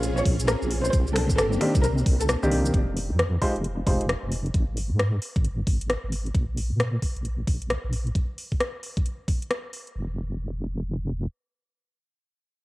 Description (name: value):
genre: UK garage, two-step garage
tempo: 133 BPM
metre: 4/4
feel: swing 63% on 16ths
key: F minor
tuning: A4 = 440 Hz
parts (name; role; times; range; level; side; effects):
- soft string machine; sustained chords; 0.0-2.7 s; Bb3 to Ab4; -32 LUFS; left 1 dB; ensemble chorus, sidechain pumping
- deep soft wobble bass; bass; 0.0-11.3 s; F1 to Bb2; -26 LUFS; equal; chorus
- garage drum kit; drums; 0.0-9.9 s; finger snaps, hi-hat, rim click, shaker; -29 LUFS; equal; studio reverb, cassette tape
- dark studio violin section; melody; 0.2-2.3 s; A4 to Db5; -29 LUFS; equal; cassette tape, tape echo
- electronic kick drum; drums; 0.3-9.4 s; none; -23 LUFS; equal; studio reverb, cassette tape
- dark grand piano; stabs; 1.6-4.0 s; Eb3 to C5; -27 LUFS; equal; low-pass filter, tape echo
room: digital ambience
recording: home recording on cassette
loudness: -23 LUFS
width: side -19 dB against mid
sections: 0.0-2.7 A section; 2.7-10.0 B section; 10.0-12.6 C section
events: drop 0.0-2.7; filter sweep on wobble bass 2.7-8.2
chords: 0.0 Bbm9; 0.9 Cm9; 2.7 Fm9; 4.5 N.C.